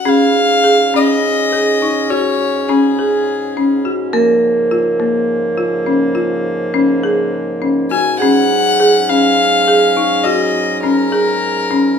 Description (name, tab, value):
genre	contemporary instrumental, chamber music in an uneven meter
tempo	206 BPM (eighths)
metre	7/8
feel	straight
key	unclear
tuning	A4 = 440 Hz
part	rich violin	melody	0.0-3.8, 7.9-12.0 s	Ab4 to Ab5	-15 LUFS	left 4 dB	none
part	vibraphone with hard mallets	second line	0.1-12.0 s	Ab4 to Bb4	-18 LUFS	right 5 dB	none
part	clear woodwind section	sustained chords	0.1-12.0 s	Ab2 to Db4	-22 LUFS	equal	none
part	folk marimba with medium hard mallets	arpeggios	0.1-11.9 s	Bb3 to Ab4	-16 LUFS	left 1 dB	none
room	moderate recital hall reverb, RT60 1.7 s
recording	minimal, uncompressed stereo recording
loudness	-12 LUFS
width	side -7 dB against mid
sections	0.1-12.0 A section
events	none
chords	0.1 Ab7sus4; 4.1 Bbm/Ab; 8.2 Ab7sus4